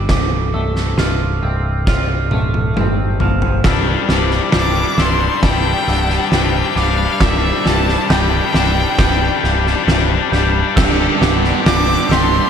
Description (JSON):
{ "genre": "post-rock", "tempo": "67 BPM", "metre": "4/4", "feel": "straight", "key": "C major", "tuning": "A4 = 440 Hz", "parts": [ { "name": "glockenspiel with rubber mallets", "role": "arpeggios", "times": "0.0-12.5 s", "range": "D6 to G6", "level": "-26 LUFS", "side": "right 5 dB", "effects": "analog delay" }, { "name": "twangy electric guitar", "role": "arpeggios", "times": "0.0-12.5 s", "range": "C2 to G4", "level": "-24 LUFS", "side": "left 2 dB", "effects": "analog chorus, analog delay" }, { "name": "growling picked electric bass", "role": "bass", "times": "0.0-12.4 s", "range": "C1 to G1", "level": "-18 LUFS", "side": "equal", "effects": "overdrive" }, { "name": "oversized low-tuned drum kit", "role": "drums", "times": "0.1-12.3 s", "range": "crash cymbal, kick drum, snare drum, toms", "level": "-17 LUFS", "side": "equal", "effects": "none" }, { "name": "distorted electric guitar", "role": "riff", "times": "3.7-12.5 s", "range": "G3 to G4", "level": "-19 LUFS", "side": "left 12 dB", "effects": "distortion" }, { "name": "bright violin", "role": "melody", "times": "4.6-12.5 s", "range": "E5 to D6", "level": "-21 LUFS", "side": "right 2 dB", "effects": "analog delay" }, { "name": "crunchy overdriven guitar", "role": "riff", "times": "10.8-12.5 s", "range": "G2 to D3", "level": "-19 LUFS", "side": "right 13 dB", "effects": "none" } ], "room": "light reverb, small room ambience", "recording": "none", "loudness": "-13 LUFS", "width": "side -8 dB against mid", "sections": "0.0-3.7 A section; 3.7-12.5 B section", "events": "drum fill 1.9-3.7; build-up 3.7-12.5", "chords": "0.1 F/C; 3.7 Cadd9; 10.8 G/C" }